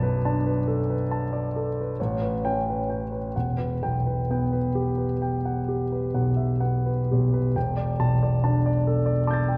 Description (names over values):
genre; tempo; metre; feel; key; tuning
classical, impressionist solo piano; 42-48 BPM (dotted quarters); 9/8; rubato; E minor; A4 = 441 Hz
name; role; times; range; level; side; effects
warm concert grand piano; solo; 0.0-9.6 s; E1 to A6; -25 LUFS; equal; none
room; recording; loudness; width
wet concert hall reverb, RT60 1.8 s; heard from further back in the room; -25 LUFS; mono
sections
0.0-7.6 A section; 7.6-9.6 A section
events
none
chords
0.0 Bm7; 2.0 A9; 3.3 Emadd9; 7.6 Em11